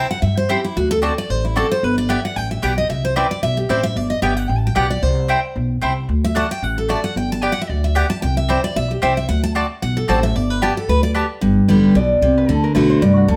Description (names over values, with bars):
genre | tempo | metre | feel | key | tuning
bluegrass | 225 BPM | 4/4 | swing 54% on 8ths | G major | A4 = 441 Hz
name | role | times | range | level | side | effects
picked steel-string acoustic guitar | accompaniment | 0.0-13.4 s | F#2 to A5 | -21 LUFS | equal | none
mandolin | stabs | 0.0-11.3 s | A3 to A5 | -23 LUFS | equal | none
upright bass | bass | 0.2-13.4 s | G1 to G2 | -22 LUFS | equal | none
lap resonator guitar | melody | 12.0-13.4 s | F#4 to D5 | -21 LUFS | equal | plate reverb
room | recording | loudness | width
moderate studio reverb, RT60 0.8 s | none | -18 LUFS | mono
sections
0.0-11.4 A section; 11.4-13.4 B section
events
steel-string acoustic guitar solo 0.0-11.4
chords
0.0 C; 0.8 D7; 1.8 G; 2.9 Cadd9; 4.0 G; 5.0 C; 6.1 D; 7.2 G; 8.2 Cadd9; 9.3 D7; 10.4 Gadd9; 11.4 G; 12.5 D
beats
0.23 0.50 | 0.76 1.03 1.29 1.56 | 1.83 2.09 2.36 2.63 | 2.89 3.16 3.43 3.69 | 3.96 4.23 4.49 4.76 | 5.03 5.29 5.56 5.83 | 6.09 6.36 6.63 6.89 | 7.16 7.43 7.69 7.96 | 8.23 8.49 8.76 9.03 | 9.29 9.56 9.83 10.09 | 10.36 10.62 10.89 11.16 | 11.42 11.69 11.96 12.22 | 12.49 12.75 13.02 13.28